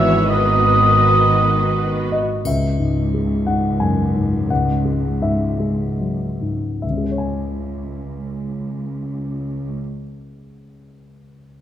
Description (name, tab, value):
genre	cinematic, emotional film score for orchestra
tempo	70-90 BPM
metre	3/4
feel	rubato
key	C# minor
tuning	A4 = 440 Hz
part	muted studio violin section	melody	0.0-2.1 s	B4 to C#5	-27 LUFS	left 5 dB	none
part	muted studio violin section	second line	0.0-2.1 s	D#5 to E5	-28 LUFS	left 4 dB	none
part	warm oboe	second line	0.0-2.1 s	D#5 to E5	-16 LUFS	equal	none
part	dark concert grand piano	accompaniment	0.0-11.6 s	C#2 to G#5	-22 LUFS	left 2 dB	none
part	muted studio viola section	accompaniment	0.0-2.2 s	B3 to F#4	-24 LUFS	right 2 dB	none
part	warm French horn section	sustained chords	0.0-2.1 s	D#3 to E3	-25 LUFS	left 4 dB	none
part	muted studio cello section	bass	0.0-9.8 s	C#2 to E3	-25 LUFS	right 2 dB	none
part	muted studio double bass section	bass	0.0-2.2 s	G#1	-20 LUFS	right 3 dB	none
part	triangle	percussion	2.5-3.8 s	none	-40 LUFS	left 2 dB	none
room	moderate concert hall reverb, RT60 1.9 s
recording	none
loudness	-17 LUFS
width	side -11 dB against mid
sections	0.0-2.5 A section; 2.5-6.8 B section; 6.8-11.6 C section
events	slowing down 1.4-6.8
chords	0.0 G#m7; 2.5 C#m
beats	| 0.29 1.02 1.75 | 2.45 3.13 3.80 | 4.50 5.22 5.99 | 6.83 7.65 8.48 | 9.30 10.12 10.96